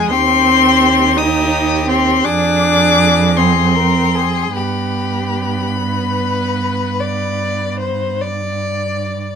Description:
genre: classical, slow romantic movement for string quartet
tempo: 48-58 BPM (dotted quarters)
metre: 12/8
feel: rubato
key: unclear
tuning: A4 = 441 Hz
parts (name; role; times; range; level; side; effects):
- rich violin; melody; 0.0-8.2 s; B5 to Eb6; -17 LUFS; left 11 dB; none
- rich violin; second line; 0.0-9.4 s; G4 to D5; -22 LUFS; left 3 dB; none
- rich viola; accompaniment; 0.0-8.2 s; Ab3 to Eb4; -18 LUFS; right 3 dB; none
- rich cello; bass; 0.0-9.2 s; Eb2 to G2; -19 LUFS; right 4 dB; none
room: light reverb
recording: none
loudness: -13 LUFS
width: side -6 dB against mid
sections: 0.0-9.4 A section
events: none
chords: 0.1 Cm/Eb; 2.3 Ddim/F; 4.6 G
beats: | 0.12 1.17 2.25 3.37 | 4.55 5.79 7.02 8.22

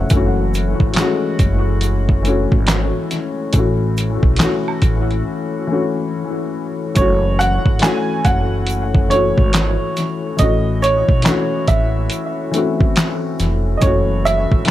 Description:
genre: lo-fi hip hop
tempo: 70 BPM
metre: 4/4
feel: swing 65% on 16ths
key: F# minor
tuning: A4 = 438 Hz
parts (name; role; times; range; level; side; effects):
- warm upright piano; accompaniment; 0.0-14.7 s; E3 to F#5; -20 LUFS; left 4 dB; cassette tape, analog delay
- upright bass; bass; 0.0-14.7 s; E#1 to B1; -19 LUFS; equal; none
- dusty soul sampler-style drum kit; drums; 0.1-14.7 s; handclaps, hi-hat, kick drum, snare drum; -16 LUFS; equal; overdrive
- egg shaker and woodblock; percussion; 0.1-14.5 s; none; -34 LUFS; right 8 dB; none
- warm upright piano; melody; 7.0-14.7 s; C#5 to G#5; -20 LUFS; right 3 dB; analog delay
room: small room reverb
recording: echo-heavy mix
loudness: -14 LUFS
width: side -13 dB against mid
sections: 0.0-14.7 A section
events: break 5.2-7.0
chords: 0.1 F#m7; 3.5 A6; 7.0 F#m7; 10.4 A6; 13.8 F#m7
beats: | 0.11 0.96 1.82 2.68 | 3.54 4.39 5.25 6.11 | 6.96 7.82 8.68 9.54 | 10.39 11.25 12.11 12.96 | 13.82 14.68

